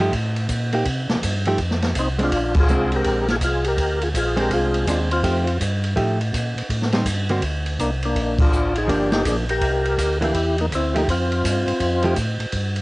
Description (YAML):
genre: soul jazz organ trio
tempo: 164 BPM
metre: 4/4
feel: swing 64% on 8ths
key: unclear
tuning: A4 = 440 Hz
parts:
  - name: hollow-body jazz guitar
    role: accompaniment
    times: 0.0-12.2 s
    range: D3 to G4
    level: -23 LUFS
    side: right 1 dB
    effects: cassette tape
  - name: mellow tonewheel organ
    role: bass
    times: 0.0-12.8 s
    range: G1 to C3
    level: -23 LUFS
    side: equal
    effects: overdrive, chorus vibrato, slow rotary speaker
  - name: open jazz drum kit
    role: drums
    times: 0.1-12.8 s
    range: crash cymbal, hi-hat, kick drum, ride cymbal, snare drum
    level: -24 LUFS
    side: equal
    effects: none
  - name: percussive tonewheel organ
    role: melody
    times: 2.0-5.6, 7.8-12.1 s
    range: Bb3 to Bb4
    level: -22 LUFS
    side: left 1 dB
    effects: slow rotary speaker, overdrive, chorus vibrato, cassette tape
room: small room ambience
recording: home recording on cassette, nothing above 10.3 kHz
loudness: -18 LUFS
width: side -21 dB against mid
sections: 0.0-12.8 A section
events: band accent 2.5, 8.3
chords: 0.0 F9; 0.9 Cm; 1.6 F5; 2.3 Bb9; 5.2 F9; 6.7 Am7b5; 7.4 Bbadd9; 8.2 Gm7; 9.6 C9; 11.1 Fadd9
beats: 0.12 0.49 | 0.85 1.22 1.58 1.95 | 2.31 2.68 3.04 3.41 | 3.78 4.14 4.51 4.87 | 5.24 5.60 5.97 6.33 | 6.70 7.06 7.43 7.79 | 8.15 8.52 8.88 9.25 | 9.61 9.98 10.34 10.71 | 11.07 11.44 11.80 12.16 | 12.53